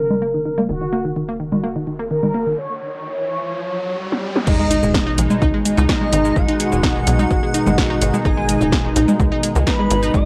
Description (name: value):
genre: melodic techno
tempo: 127 BPM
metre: 4/4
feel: straight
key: G# minor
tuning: A4 = 436 Hz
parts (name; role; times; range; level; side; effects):
- expressive synth lead; melody; 0.0-10.3 s; D#4 to D#5; -26 LUFS; equal; ensemble chorus, cassette tape, tape echo
- sweeping resonant pad; sustained chords; 0.0-10.3 s; B2 to D#4; -31 LUFS; equal; none
- unison pluck; arpeggios; 0.0-10.2 s; D#3 to D#4; -25 LUFS; equal; sidechain pumping, cassette tape, analog delay
- tight sequencer bass; bass; 0.0-10.2 s; D#1 to C#2; -22 LUFS; equal; sidechain pumping
- punchy analog drum machine; drums; 0.1-10.2 s; congas, crash cymbal, hi-hat, shaker, snare drum; -24 LUFS; equal; overdrive, low-pass filter on perc, cassette tape, low-pass filter on snare, low-pass filter on cymbals, low-pass filter on hats, low-pass filter on room
- riser and sub drop; sound effects; 2.1-6.4 s; none; -32 LUFS; equal; none
- airy dreamy lead; second line; 4.5-10.3 s; D#5 to D#6; -32 LUFS; equal; chorus, cassette tape, sidechain pumping, analog delay
- brassy analog pad; stabs; 4.5-10.3 s; B2 to D#4; -26 LUFS; equal; chorus, sidechain pumping, cassette tape, analog delay
- electronic kick drum; drums; 4.5-10.2 s; none; -23 LUFS; equal; cassette tape
room: moderate small room reverb, RT60 0.5 s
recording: home recording on cassette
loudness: -18 LUFS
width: mono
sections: 0.0-4.5 A section; 4.5-10.3 B section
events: riser 2.1-4.5; break 2.6-4.5; drum fill 4.1-4.5; drop 4.5-10.3; impact 4.5-6.4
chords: 0.0 D#m7; 4.5 G#m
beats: 0.22 | 0.69 1.17 1.64 2.11 | 2.58 3.05 3.53 4.00 | 4.47 4.94 5.42 5.89 | 6.36 6.83 7.31 7.78 | 8.25 8.72 9.20 9.67 | 10.14